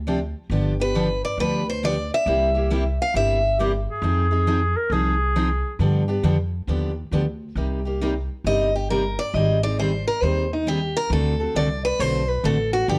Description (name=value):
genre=acoustic string swing (jazz manouche)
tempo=136 BPM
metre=4/4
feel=swing 64% on 8ths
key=C minor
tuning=A4 = 443 Hz
part: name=upright bass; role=bass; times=0.0-13.0 s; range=G1 to G2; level=-27 LUFS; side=equal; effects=none
part: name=picked steel-string acoustic guitar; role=accompaniment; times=0.1-13.0 s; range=C3 to A4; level=-26 LUFS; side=equal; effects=none
part: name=picked steel-string acoustic guitar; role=melody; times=0.8-3.6, 8.5-13.0 s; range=Eb4 to F5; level=-25 LUFS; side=equal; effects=none
part: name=breathy clarinet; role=second line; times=3.6-5.8 s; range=G4 to Bb4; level=-27 LUFS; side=equal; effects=none
room=moderate studio reverb, RT60 0.8 s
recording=worn, warbling old tape, cassette tape, warbly pitch drift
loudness=-22 LUFS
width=mono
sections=0.0-7.6 A section; 7.6-13.0 B section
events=steel-string acoustic guitar solo 7.6-13.0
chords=0.0 G7sus4; 0.5 G7; 2.3 C7; 4.0 Fm7; 5.8 G7; 7.6 Cm7; 9.3 Abmaj7; 11.1 D7